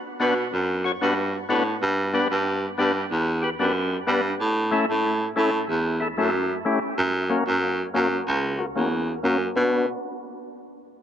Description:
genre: dancehall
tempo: 93 BPM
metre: 4/4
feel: straight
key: B minor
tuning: A4 = 438 Hz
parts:
  - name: overdriven tonewheel organ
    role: accompaniment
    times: 0.2-9.9 s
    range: A3 to C#5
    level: -25 LUFS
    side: left 2 dB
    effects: low-pass filter
  - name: breathy baritone saxophone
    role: bass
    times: 0.2-9.9 s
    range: C#2 to B2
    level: -23 LUFS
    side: right 1 dB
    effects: none
room: moderate plate reverb, RT60 3.0 s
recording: dreamy mix soaked in reverb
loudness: -21 LUFS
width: side -9 dB against mid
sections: 0.0-9.6 A section; 9.6-11.0 B section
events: filter sweep on tonewheel organ 0.0-9.6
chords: 0.0 Bm; 1.8 G; 4.4 A; 7.0 F#; 9.6 Bm

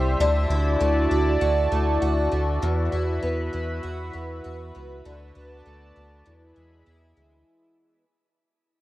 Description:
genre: dream pop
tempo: 99 BPM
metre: 4/4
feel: straight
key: E mixolydian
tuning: A4 = 440 Hz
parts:
  - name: phased analog pad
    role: sustained chords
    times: 0.0-7.5 s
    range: F#4 to C6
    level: -26 LUFS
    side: right 2 dB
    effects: phaser, chorus, shimmer reverb
  - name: picked twelve-string acoustic guitar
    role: arpeggios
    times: 0.0-8.0 s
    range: E2 to G4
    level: -28 LUFS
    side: left 2 dB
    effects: analog chorus, tape echo, shimmer reverb
  - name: round analog bass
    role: bass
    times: 0.0-7.4 s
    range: C2 to E2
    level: -25 LUFS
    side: equal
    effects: none
room: light reverb, studio reverb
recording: worn, warbling old tape, cassette tape, warbly pitch drift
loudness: -21 LUFS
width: side -16 dB against mid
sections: 0.0-7.5 A section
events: fade-out 0.0-7.5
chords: 0.2 Dadd9; 2.6 Esus2; 5.0 Bm7/D; 6.3 E

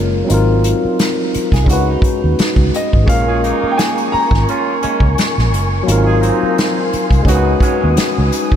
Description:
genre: R&B, neo-soul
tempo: 86 BPM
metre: 4/4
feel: swing 56% on 16ths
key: unclear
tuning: A4 = 440 Hz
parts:
  - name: tine electric piano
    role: accompaniment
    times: 0.0-8.6 s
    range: F#3 to B4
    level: -18 LUFS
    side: left 2 dB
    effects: medium stereo tremolo
  - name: vintage muted fingered electric bass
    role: bass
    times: 0.0-8.6 s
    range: F#1 to D#2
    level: -16 LUFS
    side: equal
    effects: none
  - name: unplugged drum kit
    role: drums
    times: 0.3-8.6 s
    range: hi-hat, kick drum, snare drum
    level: -17 LUFS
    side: equal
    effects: none
  - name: electric guitar through a small old amp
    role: second line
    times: 1.5-2.9 s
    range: D#4 to G#4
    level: -26 LUFS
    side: right 4 dB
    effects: lush chorus
  - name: warm grand piano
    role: melody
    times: 2.8-4.8 s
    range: D#5 to A#5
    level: -22 LUFS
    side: equal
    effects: ping-pong delay
  - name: mellow tonewheel organ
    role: sustained chords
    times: 3.1-8.6 s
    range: A#4 to D#6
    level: -21 LUFS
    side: equal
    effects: fast rotary speaker
  - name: warm horn section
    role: stabs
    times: 3.3-7.9 s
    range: F#3 to G#4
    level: -23 LUFS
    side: right 5 dB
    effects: none
room: moderate huge ambient reverb, RT60 5.4 s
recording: dreamy mix soaked in reverb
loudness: -12 LUFS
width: side -9 dB against mid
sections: 0.0-8.6 A section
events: none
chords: 0.3 G#13; 1.7 C#9sus4; 3.1 A#m7; 5.9 G#13; 7.3 C#9sus4

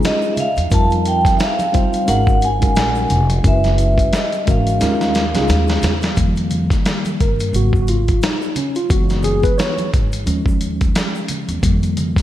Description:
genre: hip hop, jazz-hop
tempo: 88 BPM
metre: 4/4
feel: swing 58% on 16ths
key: unclear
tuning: A4 = 440 Hz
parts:
  - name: vibraphone with medium mallets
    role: melody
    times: 0.0-5.8 s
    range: Eb5 to A5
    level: -20 LUFS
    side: equal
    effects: ping-pong delay
  - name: mellow tine electric piano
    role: accompaniment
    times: 0.0-12.2 s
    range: Db3 to Db5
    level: -21 LUFS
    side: equal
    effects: medium stereo tremolo
  - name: upright bass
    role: bass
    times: 0.0-12.1 s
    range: F1 to G2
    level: -19 LUFS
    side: equal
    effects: none
  - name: dusty soul sampler-style drum kit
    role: drums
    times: 0.0-12.2 s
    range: hi-hat, kick drum, snare drum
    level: -18 LUFS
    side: equal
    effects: none
  - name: egg shaker and congas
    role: percussion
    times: 0.0-12.2 s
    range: none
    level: -32 LUFS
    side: right 1 dB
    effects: none
room: moderate lush hall reverb, RT60 2.5 s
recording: dreamy mix soaked in reverb, vinyl crackle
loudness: -14 LUFS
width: side -13 dB against mid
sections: 0.0-6.2 A section; 6.2-12.2 B section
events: drum fill 4.8-6.2; tine electric piano solo 6.2-12.2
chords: 0.0 Eb9sus4; 0.7 F9sus4; 2.1 Ab9sus4; 3.4 Gb9sus4; 4.8 Eb9sus4; 6.2 F9sus4; 7.5 Ab9sus4; 8.9 Gb9sus4; 10.3 Eb9sus4; 11.6 F9sus4

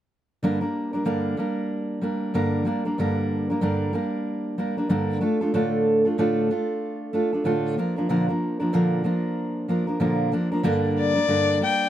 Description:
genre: acoustic pop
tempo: 94 BPM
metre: 4/4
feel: swing 60% on 16ths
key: G minor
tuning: A4 = 440 Hz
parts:
  - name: fingerpicked steel-string acoustic guitar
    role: accompaniment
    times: 0.4-11.9 s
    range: G2 to Bb4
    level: -22 LUFS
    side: right 1 dB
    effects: none
  - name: dark violin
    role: melody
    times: 11.0-11.9 s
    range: D5 to G5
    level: -21 LUFS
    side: left 5 dB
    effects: tape echo
room: light reverb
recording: echo-heavy mix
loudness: -22 LUFS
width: side -12 dB against mid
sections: 0.4-10.7 A section; 10.7-11.9 B section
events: none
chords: 0.4 Gm; 5.2 Dm/A; 7.8 Bb; 10.7 Gm

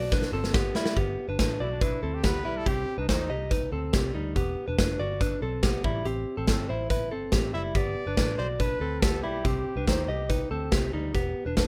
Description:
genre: jangly indie pop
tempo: 142 BPM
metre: 4/4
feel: straight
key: G major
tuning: A4 = 440 Hz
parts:
  - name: direct-recorded clean electric guitar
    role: arpeggios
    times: 0.0-11.7 s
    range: G3 to Eb5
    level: -32 LUFS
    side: equal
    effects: none
  - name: vintage muted picked electric bass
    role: bass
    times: 0.0-11.7 s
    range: E1 to Eb2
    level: -35 LUFS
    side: equal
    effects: none
  - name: big rock drum kit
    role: drums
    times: 0.1-11.7 s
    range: hi-hat, kick drum, snare drum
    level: -30 LUFS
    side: equal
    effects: none
  - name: bright trumpet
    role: melody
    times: 1.6-3.5, 7.5-10.9 s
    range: D4 to E5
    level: -40 LUFS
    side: equal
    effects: analog delay
room: light reverb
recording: rough home demo mix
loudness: -28 LUFS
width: mono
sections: 1.0-11.7 A section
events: drum fill 0.1-1.0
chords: 0.0 G6; 2.7 Cm; 4.4 Em7; 5.8 Am7; 7.8 G6; 9.4 Cm; 11.1 Em7

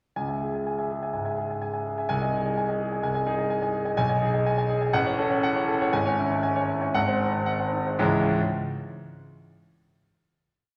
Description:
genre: classical, virtuoso piano study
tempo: 110-130 BPM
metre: 4/4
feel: rubato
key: C# minor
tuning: A4 = 442 Hz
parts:
  - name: warm grand piano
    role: solo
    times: 0.2-8.4 s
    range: G#1 to G#5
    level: -26 LUFS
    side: equal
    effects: none
room: wet recital hall reverb, RT60 1.8 s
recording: none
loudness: -26 LUFS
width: mono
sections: 0.2-8.0 A section; 8.0-10.1 final chord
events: slowing down 3.0-8.0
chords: 0.2 C#m; 2.1 G#/B#; 4.0 G#m/B; 4.9 F#m/A; 5.9 C#m/G#; 6.9 G#7; 8.0 C#m

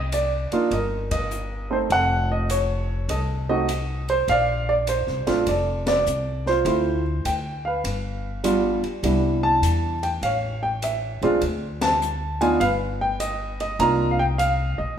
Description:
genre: jazz piano trio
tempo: 101 BPM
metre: 4/4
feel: swing 67% on 8ths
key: unclear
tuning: A4 = 440 Hz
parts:
  - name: upright bass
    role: bass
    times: 0.0-15.0 s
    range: F1 to E2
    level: -26 LUFS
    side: left 1 dB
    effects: none
  - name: warm upright piano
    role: melody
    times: 0.1-15.0 s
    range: G3 to Bb5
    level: -22 LUFS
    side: right 2 dB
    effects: none
  - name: open jazz drum kit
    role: drums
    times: 0.1-14.6 s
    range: hi-hat, kick drum, ride cymbal, snare drum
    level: -33 LUFS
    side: left 2 dB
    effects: none
room: wet large studio reverb, RT60 1.4 s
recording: band playing live in one room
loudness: -20 LUFS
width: side -8 dB against mid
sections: 0.0-15.0 A section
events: band accent 1.0, 5.8, 11.7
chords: 0.0 Cm9; 1.9 F7b9; 4.3 Bbmaj9; 6.7 Dm9; 7.8 G7; 9.0 Cmaj9; 10.2 A; 11.4 D5; 12.6 G; 13.8 Cm11

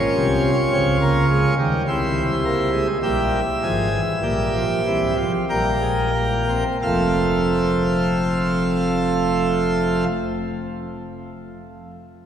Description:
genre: classical, baroque-style 4-part fugue for pipe organ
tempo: 44-55 BPM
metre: 4/4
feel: straight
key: unclear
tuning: A4 = 442 Hz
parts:
  - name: pipe organ, plenum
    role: solo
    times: 0.0-10.1 s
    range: F1 to G5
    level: -18 LUFS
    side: equal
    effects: none
room: wet cathedral reverb, RT60 5.4 s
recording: recorded in a church or concert hall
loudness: -18 LUFS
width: side -9 dB against mid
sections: 0.0-6.8 A section; 6.8-12.2 B section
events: slowing down 0.0-6.8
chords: 0.0 Bbm; 1.9 C7; 6.8 F

